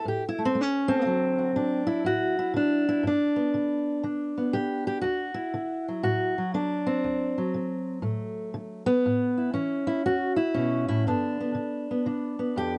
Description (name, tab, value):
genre	acoustic country blues, solo or duo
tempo	120 BPM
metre	4/4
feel	swing 65% on 8ths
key	D mixolydian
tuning	A4 = 439 Hz
part	fingerpicked steel-string acoustic guitar	solo	0.0-12.8 s	D2 to G4	-27 LUFS	equal	none
room	moderate booth ambience, RT60 0.2 s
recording	nothing above 10.6 kHz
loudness	-27 LUFS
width	mono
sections	0.0-1.0 A section; 1.0-12.8 B section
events	steel-string acoustic guitar solo 0.0-1.0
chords	0.0 A7; 1.0 D7; 3.0 G; 5.0 D7; 9.0 A; 11.1 G7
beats	0.05 0.54 | 1.04 1.54 2.04 2.54 | 3.04 3.54 4.04 4.54 | 5.04 5.54 6.04 6.54 | 7.04 7.54 8.04 8.54 | 9.04 9.55 10.05 10.55 | 11.06 11.56 12.06 12.57